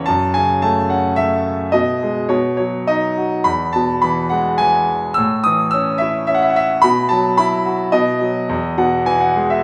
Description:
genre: classical, lyrical solo piano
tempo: 107 BPM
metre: 3/4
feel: rubato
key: E major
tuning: A4 = 441 Hz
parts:
  - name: bright concert grand piano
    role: solo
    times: 0.0-9.6 s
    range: E2 to E6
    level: -17 LUFS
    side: equal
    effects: none
room: moderate recital hall reverb, RT60 1.8 s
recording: recorded in a church or concert hall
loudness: -17 LUFS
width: mono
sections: 0.0-9.6 A section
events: grand piano fill 8.5-9.6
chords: 0.1 F#m; 1.7 B6; 2.3 B; 3.5 E; 5.2 A; 6.8 Bsus4; 7.9 B; 8.5 E

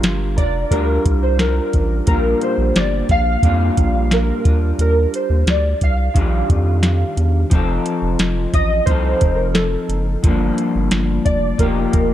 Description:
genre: indie pop, bedroom pop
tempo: 88 BPM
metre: 4/4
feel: straight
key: Bb major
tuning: A4 = 438 Hz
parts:
  - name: electric guitar through a small old amp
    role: accompaniment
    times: 0.0-12.1 s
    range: G2 to Bb4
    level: -22 LUFS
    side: left 2 dB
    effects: lush chorus, vibrato effect
  - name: round analog bass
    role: bass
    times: 0.0-12.1 s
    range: F1 to F2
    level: -18 LUFS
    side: equal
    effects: none
  - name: soft vintage rhythm box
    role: drums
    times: 0.0-12.1 s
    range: hi-hat, kick drum, snare drum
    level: -17 LUFS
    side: equal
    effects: none
  - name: warbly lo-fi synth keys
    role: melody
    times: 0.4-12.1 s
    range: A4 to F5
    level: -21 LUFS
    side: right 1 dB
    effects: ensemble chorus, dub echo
room: light reverb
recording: echo-heavy mix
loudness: -14 LUFS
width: side -12 dB against mid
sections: 0.0-12.1 A section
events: none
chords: 0.0 Gm7; 2.1 Bb6; 4.5 Ebmaj9; 7.5 F7; 10.2 Gm7; 11.6 F9sus4

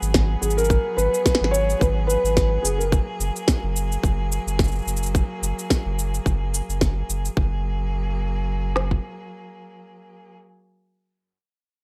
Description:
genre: folktronica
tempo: 108 BPM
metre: 4/4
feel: swing 56% on 16ths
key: F# major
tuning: A4 = 440 Hz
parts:
  - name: felt-muted upright piano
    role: melody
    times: 0.0-2.9 s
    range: G#4 to C#5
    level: -26 LUFS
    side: equal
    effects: tape echo
  - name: clear string quartet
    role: sustained chords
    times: 0.0-10.3 s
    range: F#3 to G#4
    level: -35 LUFS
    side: equal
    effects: none
  - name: warm sub bass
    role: bass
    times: 0.0-9.0 s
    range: F#1 to G#1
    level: -26 LUFS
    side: equal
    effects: none
  - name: electronic shaker and snare drum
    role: drums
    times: 0.0-7.3 s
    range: none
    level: -27 LUFS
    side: equal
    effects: none
  - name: organic electronic drum kit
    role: drums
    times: 0.1-9.0 s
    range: kick drum, snare drum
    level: -24 LUFS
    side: equal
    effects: none
room: little or no reverb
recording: rough home demo mix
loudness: -23 LUFS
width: mono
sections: 0.0-7.4 A section; 7.4-9.6 B section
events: none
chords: 0.0 G#m7; 2.9 F#add9

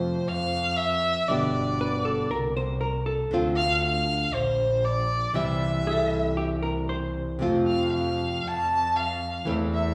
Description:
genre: tango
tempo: 118 BPM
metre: 4/4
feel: rubato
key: F major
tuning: A4 = 440 Hz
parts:
  - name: rich violin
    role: second line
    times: 0.0-9.9 s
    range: C5 to A5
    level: -29 LUFS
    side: equal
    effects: none
  - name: nylon-string guitar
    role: accompaniment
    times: 0.0-9.9 s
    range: B2 to G4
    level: -30 LUFS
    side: equal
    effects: none
  - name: rich double bass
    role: bass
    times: 0.0-9.9 s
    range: G1 to F2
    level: -33 LUFS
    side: equal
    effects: none
  - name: hollow-body jazz guitar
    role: second line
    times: 1.8-7.5 s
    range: G4 to C5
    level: -33 LUFS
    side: equal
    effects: none
room: wet recital hall reverb, RT60 1.5 s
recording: recorded in a church or concert hall, small room reverb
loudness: -26 LUFS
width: mono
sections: 0.0-9.9 A section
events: violin solo 0.0-9.9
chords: 0.3 N.C.; 1.3 G; 2.3 Am/C; 3.3 Dm7; 4.3 Bb; 5.4 C; 7.4 F

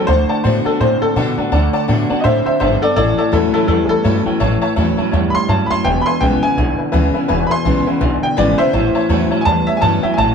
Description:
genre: rock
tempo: 166 BPM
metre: 4/4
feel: swing 60% on 8ths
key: unclear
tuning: A4 = 443 Hz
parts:
  - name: clear upright piano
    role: melody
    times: 0.0-10.3 s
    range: E4 to C6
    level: -18 LUFS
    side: left 1 dB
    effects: none
  - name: honky-tonk upright piano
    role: accompaniment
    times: 0.0-10.3 s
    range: B4 to B5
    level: -23 LUFS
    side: left 2 dB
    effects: none
  - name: picked steel-string acoustic guitar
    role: accompaniment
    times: 0.0-10.3 s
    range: E2 to F#4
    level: -21 LUFS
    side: left 3 dB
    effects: none
  - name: electric guitar through a small old amp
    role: riff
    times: 0.0-10.3 s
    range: E2 to C4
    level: -20 LUFS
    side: right 2 dB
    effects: none
  - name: upright bass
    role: bass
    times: 0.1-10.3 s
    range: E1 to B2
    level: -18 LUFS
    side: equal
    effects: none
room: moderate studio reverb, RT60 0.7 s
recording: band playing live in one room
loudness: -13 LUFS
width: side -6 dB against mid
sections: 0.0-10.3 A section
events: upright piano solo 0.0-10.3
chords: 0.1 D; 3.0 A; 5.9 E; 8.7 A

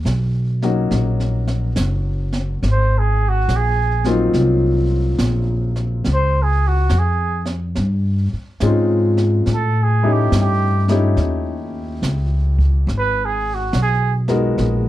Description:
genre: jazz ballad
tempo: 70 BPM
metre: 4/4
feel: swing 66% on 8ths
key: unclear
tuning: A4 = 440 Hz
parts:
  - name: upright bass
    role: bass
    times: 0.0-14.9 s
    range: F#1 to A2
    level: -18 LUFS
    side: equal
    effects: none
  - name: jazz brush drum kit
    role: drums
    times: 0.1-14.9 s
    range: brushed snare drum, hi-hat, kick drum, snare drum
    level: -25 LUFS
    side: right 1 dB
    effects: none
  - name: warm baby grand piano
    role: accompaniment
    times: 0.6-14.9 s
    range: F#3 to A#4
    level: -20 LUFS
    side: left 3 dB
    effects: none
  - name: warm trumpet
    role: melody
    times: 2.7-14.1 s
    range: F#4 to B#4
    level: -20 LUFS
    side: right 4 dB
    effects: none
room: light reverb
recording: dark, warm production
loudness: -16 LUFS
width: side -14 dB against mid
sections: 0.0-14.9 A section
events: trumpet solo 0.0-14.9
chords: 0.0 D#m7; 2.6 G#13; 6.1 C#maj9; 9.5 A7#11; 12.9 G#m9

